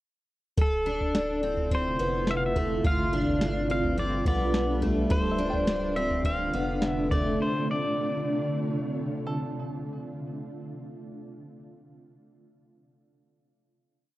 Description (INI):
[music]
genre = dream pop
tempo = 105 BPM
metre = 4/4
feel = uneven beats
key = D dorian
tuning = A4 = 438 Hz
[part]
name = pedal steel guitar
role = melody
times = 0.6-8.6 s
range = A4 to F5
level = -32 LUFS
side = left 1 dB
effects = tape echo
[part]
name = granular cloud pad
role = sustained chords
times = 1.4-9.9 s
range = C3 to B4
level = -31 LUFS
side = right 1 dB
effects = built-in reverb
[part]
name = picked twelve-string acoustic guitar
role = arpeggios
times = 0.6-7.4 s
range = A3 to A4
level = -30 LUFS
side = left 1 dB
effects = analog chorus, tape echo
[part]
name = warm sub bass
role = bass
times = 0.6-7.4 s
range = D1 to B1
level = -34 LUFS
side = equal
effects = none
[part]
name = soft vintage rhythm box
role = drums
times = 0.6-7.3 s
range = kick drum, snare drum, toms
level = -28 LUFS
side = equal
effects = none
[part]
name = bluegrass banjo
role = texture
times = 5.1-10.2 s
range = A4 to G5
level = -41 LUFS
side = right 2 dB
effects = tape echo
[sound]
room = moderate small room reverb, RT60 0.5 s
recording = worn, warbling old tape, cassette tape, warbly pitch drift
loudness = -25 LUFS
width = side -16 dB against mid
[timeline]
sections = 0.6-9.9 A section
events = slowing down 5.1-9.9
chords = 0.6 Dm9; 2.8 G7; 5.1 Dm9; 7.4 Dm7